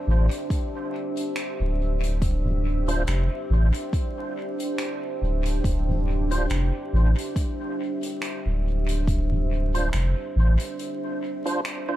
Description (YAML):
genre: ambient dub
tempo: 70 BPM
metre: 4/4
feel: swing 56% on 16ths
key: D minor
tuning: A4 = 438 Hz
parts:
  - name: deep dark ambient pad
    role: sustained chords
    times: 0.0-12.0 s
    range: D4 to E5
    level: -30 LUFS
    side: right 1 dB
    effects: chorus, built-in reverb
  - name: warm sub bass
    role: bass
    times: 0.1-10.6 s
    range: D1 to A1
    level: -22 LUFS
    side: equal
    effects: none
  - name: soft-mallet drum kit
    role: drums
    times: 0.3-11.8 s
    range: finger snaps, hi-hat, toms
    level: -35 LUFS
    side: equal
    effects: dub echo
  - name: electronic kick drum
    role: drums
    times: 0.5-9.3 s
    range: none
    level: -25 LUFS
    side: equal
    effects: none
  - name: tonewheel organ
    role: stabs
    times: 2.9-12.0 s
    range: D4 to C5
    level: -32 LUFS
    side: right 2 dB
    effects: overdrive, chorus vibrato, slow rotary speaker, dub echo
room: small room ambience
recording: echo-heavy mix, vinyl crackle, lossy compression artefacts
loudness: -23 LUFS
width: side -14 dB against mid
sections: 0.0-12.0 A section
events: break 10.8-12.0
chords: 0.0 Dm7